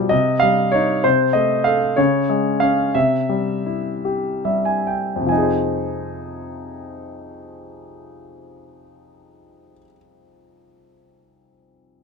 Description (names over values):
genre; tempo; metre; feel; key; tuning
classical, lyrical solo piano; 46-65 BPM (dotted quarters); 6/8; rubato; F minor; A4 = 439 Hz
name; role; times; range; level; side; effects
clear concert grand piano; solo; 0.0-12.0 s; F2 to Ab5; -18 LUFS; equal; none
room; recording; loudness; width
light reverb; close, detailed microphones; -16 LUFS; side -5 dB against mid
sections
0.0-5.3 A section; 5.3-10.4 B section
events
slowing down 1.0-5.3; grand piano fill 4.0-5.3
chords
0.1 Cm; 1.0 Cm6; 2.0 Db; 3.0 C; 5.3 Fm7